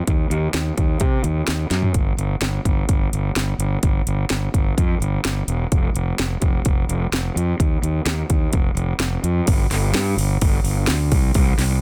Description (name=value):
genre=hard rock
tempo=128 BPM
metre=4/4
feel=straight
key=unclear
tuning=A4 = 442 Hz
part: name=fuzz fingered electric bass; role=bass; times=0.1-11.8 s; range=E1 to C3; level=-23 LUFS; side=equal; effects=overdrive
part: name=house drum kit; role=drums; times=0.1-11.7 s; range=hi-hat, kick drum, snare drum, toms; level=-22 LUFS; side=equal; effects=none
room=little or no reverb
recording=dense, heavily limited modern master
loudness=-20 LUFS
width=mono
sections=0.0-9.5 A section; 9.5-11.8 B section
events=drum fill 1.7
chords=none